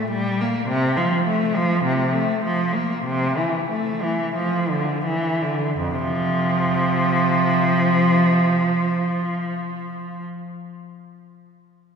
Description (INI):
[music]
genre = classical, baroque-style suite movement for unaccompanied cello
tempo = 40-54 BPM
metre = 4/4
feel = rubato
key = F major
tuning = A4 = 440 Hz
[part]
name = rich cello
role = solo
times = 0.0-10.2 s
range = F2 to Bb3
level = -19 LUFS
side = equal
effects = none
[sound]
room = wet church reverb, RT60 3.4 s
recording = recorded in a church or concert hall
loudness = -18 LUFS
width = side -6 dB against mid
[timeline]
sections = 0.0-5.8 A section; 5.8-11.2 B section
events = slowing down 0.0-5.8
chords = 0.0 Gm; 0.7 C7sus4; 3.1 N.C.; 5.8 F5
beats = | 0.69 1.86 3.07 4.35 | 5.78 7.14 8.49 9.82